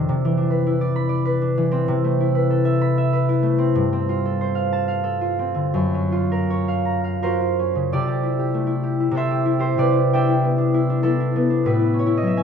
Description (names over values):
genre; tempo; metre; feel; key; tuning
classical, solo harp piece; 79-104 BPM; 3/4; rubato; unclear; A4 = 440 Hz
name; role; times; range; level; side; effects
concert harp; solo; 0.0-12.4 s; F#2 to B5; -18 LUFS; equal; none
room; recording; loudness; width
light reverb; dark, warm production; -18 LUFS; side -7 dB against mid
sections
0.0-7.9 A section; 7.9-12.4 B section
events
none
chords
0.1 Cmaj9; 1.9 Amadd9/C; 3.7 G11; 5.8 F#maj7; 7.9 Am7/C; 9.8 Em7/C; 11.6 A69